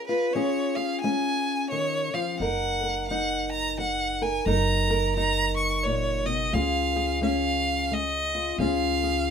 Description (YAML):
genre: acoustic folk duo or small band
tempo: 87 BPM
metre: 3/4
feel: swing 61% on 8ths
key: F# major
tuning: A4 = 440 Hz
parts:
  - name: clear violin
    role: melody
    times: 0.0-9.3 s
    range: B4 to C#6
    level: -26 LUFS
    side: right 1 dB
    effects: none
  - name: fingerpicked steel-string acoustic guitar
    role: accompaniment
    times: 0.0-9.3 s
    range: F#2 to A#4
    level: -27 LUFS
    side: left 2 dB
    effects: none
  - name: upright bass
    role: bass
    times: 2.4-9.3 s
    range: F#1 to C#2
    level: -30 LUFS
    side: right 1 dB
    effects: none
room: moderate small room reverb, RT60 0.5 s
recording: minimal, uncompressed stereo recording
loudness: -23 LUFS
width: side -7 dB against mid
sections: 0.0-9.3 A section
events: none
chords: 0.0 C#/E#; 2.4 F#6; 6.5 C#